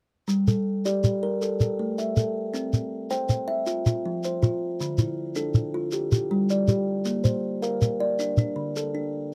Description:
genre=southern african traditional, mbira-style interlocking cycle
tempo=106 BPM (dotted quarters)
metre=12/8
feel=straight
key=G dorian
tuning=A4 = 440 Hz
part: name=kalimba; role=arpeggios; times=0.3-9.3 s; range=D3 to G5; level=-28 LUFS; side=equal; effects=none
part: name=shekere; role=percussion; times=0.3-8.9 s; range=none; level=-26 LUFS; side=equal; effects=none
room=little or no reverb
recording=close, detailed microphones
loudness=-26 LUFS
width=mono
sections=0.3-9.3 A section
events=none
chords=0.3 Gm; 1.4 A5; 2.5 C; 3.7 F5; 4.8 Dm; 5.9 G5; 7.1 Bb; 8.2 D5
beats=| 0.29 0.85 1.41 1.98 | 2.54 3.10 3.67 4.23 | 4.80 5.36 5.93 6.49 | 7.06 7.62 8.19 8.76 | 9.32

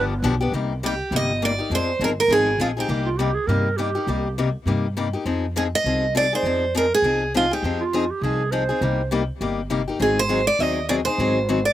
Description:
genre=acoustic string swing (jazz manouche)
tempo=203 BPM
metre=4/4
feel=swing 58% on 8ths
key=C minor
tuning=A4 = 440 Hz
part: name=growling clarinet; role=second line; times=0.0, 3.1-4.4, 7.8-9.1 s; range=F4 to C5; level=-25 LUFS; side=right 5 dB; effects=slapback echo
part: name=picked steel-string acoustic guitar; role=accompaniment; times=0.0-11.6 s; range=C3 to Ab4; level=-24 LUFS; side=left 4 dB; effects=none
part: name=upright bass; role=bass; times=0.0-11.7 s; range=G1 to G2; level=-26 LUFS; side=equal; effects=none
part: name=picked steel-string acoustic guitar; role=melody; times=0.9-3.1, 5.6-7.8, 10.0-11.7 s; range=F4 to Eb5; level=-20 LUFS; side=right 2 dB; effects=slapback echo
room=little or no reverb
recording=recorded outdoors, with no room sound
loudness=-19 LUFS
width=side -13 dB against mid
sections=0.5-11.7 A section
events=none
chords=0.0 G7; 0.5 Cm7; 1.7 Fm7; 2.9 Cm7; 5.3 Fm7; 8.8 Cm7; 10.0 Ab7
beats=0.23 | 0.53 0.82 1.12 1.41 | 1.71 2.00 2.30 2.60 | 2.89 3.19 3.48 3.78 | 4.07 4.37 4.67 4.96 | 5.26 5.55 5.85 6.15 | 6.44 6.74 7.03 7.33 | 7.63 7.92 8.22 8.52 | 8.81 9.11 9.41 9.70 | 10.00 10.30 10.59 10.89 | 11.19 11.48

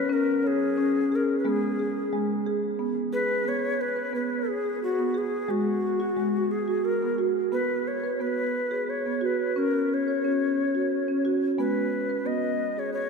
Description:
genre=world meditative, meditative tuned percussion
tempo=89 BPM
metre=3/4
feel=straight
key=G# minor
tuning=A4 = 439 Hz
part: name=Native American-style cedar flute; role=melody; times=0.0-13.1 s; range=F#4 to D#5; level=-28 LUFS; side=left 2 dB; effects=tape echo
part: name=marimba with medium mallets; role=arpeggios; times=0.0-13.1 s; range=F#3 to C#5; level=-26 LUFS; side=right 1 dB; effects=none
room=wet cathedral reverb, RT60 6.6 s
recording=in a vast, echoing space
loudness=-24 LUFS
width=side -5 dB against mid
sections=0.0-3.5 A section; 3.5-13.1 B section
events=none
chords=0.0 F#5; 1.4 G#m; 5.5 G#7sus2; 7.5 Bsus2; 9.6 F#5; 11.6 G#m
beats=0.10 0.77 | 1.45 2.12 2.80 | 3.48 4.15 4.83 | 5.50 6.18 6.86 | 7.53 8.21 8.88 | 9.56 10.23 10.91 | 11.58 12.26 12.94

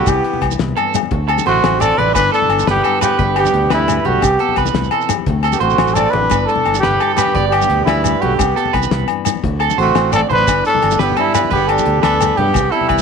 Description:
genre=highlife guitar band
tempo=115 BPM (dotted quarters)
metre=12/8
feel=straight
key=G major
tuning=A4 = 440 Hz
part: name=breathy trumpet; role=melody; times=0.0-13.0 s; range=E4 to B4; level=-17 LUFS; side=left 2 dB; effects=none
part: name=raspy tenor saxophone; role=second line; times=0.0-13.0 s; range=G3 to D4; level=-24 LUFS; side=right 15 dB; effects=none
part: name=nylon-string guitar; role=accompaniment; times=0.0-13.0 s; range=G2 to F#4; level=-25 LUFS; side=left 10 dB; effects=none
part: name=electric guitar at the edge of break-up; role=arpeggios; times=0.0-13.0 s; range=G4 to D5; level=-19 LUFS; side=right 13 dB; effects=none
part: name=fingered electric bass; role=bass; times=0.0-13.0 s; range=G1 to G2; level=-20 LUFS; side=right 1 dB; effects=none
part: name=damped 70s drum kit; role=drums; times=0.1-13.0 s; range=hi-hat, kick drum, snare drum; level=-22 LUFS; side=left 4 dB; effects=none
part: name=agogo bells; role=percussion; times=0.1-13.0 s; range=none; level=-22 LUFS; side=left 17 dB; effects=none
part: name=congas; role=percussion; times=0.1-13.0 s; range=none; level=-26 LUFS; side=left 10 dB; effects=none
part: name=shekere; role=percussion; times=0.1-13.0 s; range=none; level=-23 LUFS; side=right 8 dB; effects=none
room=light reverb, small room ambience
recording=1960s-style stereo with parts hard left and right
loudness=-12 LUFS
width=side -6 dB against mid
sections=0.0-13.0 A section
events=none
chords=0.1 Cmaj7; 1.1 D7; 2.2 G6; 4.2 Cmaj7; 5.3 D7; 6.3 G6; 8.4 Cmaj7; 9.4 D7; 10.5 G6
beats=| 0.07 0.59 1.11 1.63 | 2.15 2.67 3.19 3.71 | 4.23 4.75 5.27 5.79 | 6.32 6.83 7.36 7.88 | 8.39 8.91 9.44 9.96 | 10.47 10.99 11.51 12.03 | 12.55

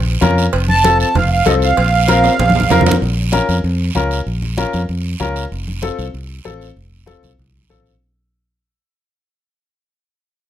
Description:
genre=latin, cumbia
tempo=192 BPM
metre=4/4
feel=straight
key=Bb harmonic minor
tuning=A4 = 441 Hz
part: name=fingered electric bass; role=bass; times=0.0-7.9 s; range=F1 to F2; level=-17 LUFS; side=equal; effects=none
part: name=clear upright piano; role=accompaniment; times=0.2-7.9 s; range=C4 to Bb4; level=-18 LUFS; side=left 5 dB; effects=none
part: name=congas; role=percussion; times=0.2-7.9 s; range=none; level=-21 LUFS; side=right 2 dB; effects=none
part: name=cowbell and timbales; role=percussion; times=0.2-2.9 s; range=none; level=-23 LUFS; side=right 5 dB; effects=none
part: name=guiro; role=percussion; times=0.2-8.0 s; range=none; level=-28 LUFS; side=right 7 dB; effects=none
part: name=accordion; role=melody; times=0.7-2.8 s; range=Eb5 to A5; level=-14 LUFS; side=right 4 dB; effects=light tremolo tuning
room=light reverb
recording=close, detailed microphones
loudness=-13 LUFS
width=side -11 dB against mid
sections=0.0-3.0 A section; 3.0-8.0 B section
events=drum fill 2.2-3.0; fade-out 3.0-8.0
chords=0.0 Bbm; 0.5 F; 1.8 Bbsus2; 3.0 Bbm; 5.5 F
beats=0.22 | 0.53 0.84 1.15 1.46 | 1.77 2.09 2.40 2.71 | 3.02 3.33 3.65 3.96 | 4.27 4.58 4.89 5.20 | 5.51 5.83 6.14 6.45 | 6.76 7.07 7.39 7.70

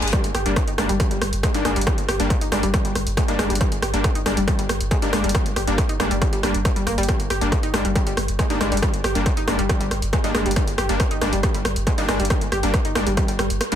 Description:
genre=driving peak-time techno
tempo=138 BPM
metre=4/4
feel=straight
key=G phrygian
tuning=A4 = 440 Hz
part: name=wide unison pluck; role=riff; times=0.0-13.8 s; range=G3 to G4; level=-26 LUFS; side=equal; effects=overdrive, sidechain pumping, tape echo
part: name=supersaw stab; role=stabs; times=0.0-13.8 s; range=G3 to D4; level=-26 LUFS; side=left 1 dB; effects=sidechain pumping, tape echo
part: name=warm sub bass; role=bass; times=0.0-13.8 s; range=G1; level=-26 LUFS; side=equal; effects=tube saturation, sidechain pumping, low-pass filter
part: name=punchy analog drum machine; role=drums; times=0.0-13.8 s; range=hi-hat, rim click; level=-25 LUFS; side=right 1 dB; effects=overdrive
part: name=electronic kick drum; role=drums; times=0.1-13.3 s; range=none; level=-23 LUFS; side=equal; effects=distortion, overdrive
room=little or no reverb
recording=none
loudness=-18 LUFS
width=side -10 dB against mid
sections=0.0-13.8 A section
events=none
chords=0.0 Gm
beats=| 0.13 0.56 1.00 1.43 | 1.87 2.30 2.74 3.17 | 3.61 4.04 4.48 4.91 | 5.35 5.78 6.22 6.65 | 7.09 7.52 7.96 8.39 | 8.82 9.26 9.69 10.13 | 10.56 11.00 11.43 11.87 | 12.30 12.74 13.17 13.61

